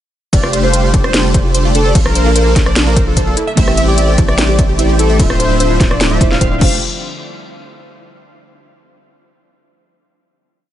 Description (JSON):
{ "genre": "future bass", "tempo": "148 BPM", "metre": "4/4", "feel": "half-time", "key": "F major", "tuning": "A4 = 436 Hz", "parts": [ { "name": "warm velvety synth lead", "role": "melody", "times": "0.3-6.8 s", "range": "A4 to F5", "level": "-20 LUFS", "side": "equal", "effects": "chorus, sidechain pumping, dub echo" }, { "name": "airy breathy pad", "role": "sustained chords", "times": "0.3-6.8 s", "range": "C3 to G5", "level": "-28 LUFS", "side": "left 2 dB", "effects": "none" }, { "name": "wide unison pluck", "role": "arpeggios", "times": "0.3-6.8 s", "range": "D4 to E5", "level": "-24 LUFS", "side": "right 3 dB", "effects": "sidechain pumping, dub echo" }, { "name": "supersaw chords", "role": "riff", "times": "0.3-6.8 s", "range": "A3 to G5", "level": "-19 LUFS", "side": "equal", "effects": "ensemble chorus, sidechain pumping" }, { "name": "saturated sub bass", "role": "bass", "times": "0.3-6.8 s", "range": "D1 to Bb1", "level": "-15 LUFS", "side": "equal", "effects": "sidechain pumping" }, { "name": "electronic kick drum", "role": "drums", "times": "0.3-6.7 s", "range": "none", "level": "-14 LUFS", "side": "equal", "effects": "overdrive" }, { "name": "trap drum kit", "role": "drums", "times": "0.3-6.7 s", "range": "crash cymbal, hi-hat, rim click, snare drum", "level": "-18 LUFS", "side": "left 1 dB", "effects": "none" }, { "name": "glassy digital keys", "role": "accompaniment", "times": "3.6-6.8 s", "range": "A3 to F5", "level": "-22 LUFS", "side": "right 3 dB", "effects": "chorus, sidechain pumping, dub echo" } ], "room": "little or no reverb", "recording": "nothing above 10.9 kHz", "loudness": "-10 LUFS", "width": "side -12 dB against mid", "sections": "0.3-6.8 drop; 6.8-8.4 final hit", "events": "drop 0.3-6.8", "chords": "0.3 F69; 2.0 Bbmaj9; 3.4 Am7; 5.2 Dm9; 6.6 F69; 6.8 N.C.", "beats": "| 0.33 0.74 1.14 1.55 | 1.95 2.36 2.76 3.17 | 3.57 3.98 4.38 4.79 | 5.20 5.60 6.01 6.41 | 6.82" }